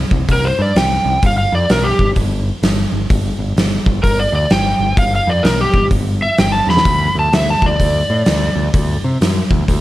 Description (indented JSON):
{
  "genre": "blues rock power trio and southern rock",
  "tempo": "128 BPM",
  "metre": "4/4",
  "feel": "swing 63% on 8ths",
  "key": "unclear",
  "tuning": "A4 = 444 Hz",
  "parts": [
    { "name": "growling picked electric bass", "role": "bass", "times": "0.0-9.8 s", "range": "G1 to C3", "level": "-18 LUFS", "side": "equal", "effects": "overdrive" },
    { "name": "oversized low-tuned drum kit", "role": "drums", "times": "0.1-9.8 s", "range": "hi-hat, kick drum, snare drum", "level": "-16 LUFS", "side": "equal", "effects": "none" },
    { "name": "overdriven slide guitar", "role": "melody", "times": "0.3-9.0 s", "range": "G4 to B5", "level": "-16 LUFS", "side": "equal", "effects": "slapback echo" }
  ],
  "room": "light reverb",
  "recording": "none",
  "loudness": "-12 LUFS",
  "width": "side -16 dB against mid",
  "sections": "0.0-9.8 A section",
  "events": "electric slide guitar solo 0.0-9.8; drum fill 6.6",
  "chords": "0.0 C5; 1.2 N.C."
}